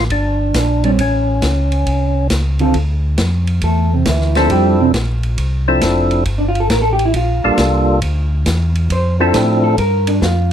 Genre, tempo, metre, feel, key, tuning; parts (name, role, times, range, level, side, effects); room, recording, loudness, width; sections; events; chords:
soul jazz organ trio; 136 BPM; 4/4; swing 67% on 8ths; D minor; A4 = 440 Hz
percussive tonewheel organ; melody; 0.0-9.8 s; F3 to A4; -16 LUFS; equal; slow rotary speaker, overdrive
mellow tonewheel organ; bass; 0.0-10.5 s; F1 to A2; -16 LUFS; equal; overdrive, chorus vibrato, slow rotary speaker
vintage drum kit; drums; 0.1-10.4 s; hi-hat, kick drum, ride cymbal, snare drum; -22 LUFS; equal
hollow-body jazz guitar; accompaniment; 0.8-10.5 s; C3 to C5; -17 LUFS; right 2 dB
little or no reverb; close, detailed microphones; -13 LUFS; side -9 dB against mid
0.0-2.7 A section; 2.7-10.5 B section
hollow-body jazz guitar solo 2.7-10.5
0.1 Gm; 1.0 A; 2.7 Dm7; 6.3 Gm7; 8.0 Dm7; 9.8 Gm7